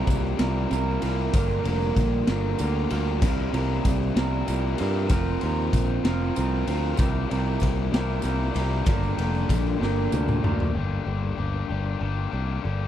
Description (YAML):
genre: indie rock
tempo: 64 BPM (dotted quarters)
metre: 6/8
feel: straight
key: G minor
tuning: A4 = 437 Hz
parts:
  - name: electric guitar through a small old amp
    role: riff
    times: 0.0-10.7 s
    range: G2 to Bb4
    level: -29 LUFS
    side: right 8 dB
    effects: lush chorus
  - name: raw garage guitar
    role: riff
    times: 0.0-12.9 s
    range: G2 to Bb4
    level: -30 LUFS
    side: left 10 dB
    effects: overdrive
  - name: modern bright picked electric bass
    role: bass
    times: 0.1-12.9 s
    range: F1 to G2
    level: -26 LUFS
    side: equal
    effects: none
  - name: raw garage drum kit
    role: drums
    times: 0.1-10.7 s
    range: crash cymbal, kick drum, ride cymbal, snare drum, toms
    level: -28 LUFS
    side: equal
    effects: none
  - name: tambourine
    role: percussion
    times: 0.1-10.4 s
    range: none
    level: -46 LUFS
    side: right 18 dB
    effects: none
room: little or no reverb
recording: none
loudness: -22 LUFS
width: side -11 dB against mid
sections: 0.0-10.8 A section; 10.8-12.9 B section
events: drum fill 9.8-10.8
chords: 0.0 C7sus4; 1.3 Gm7; 3.2 C7sus4; 5.1 Fsus4; 7.0 C7sus4; 8.9 Gm7; 10.8 Gm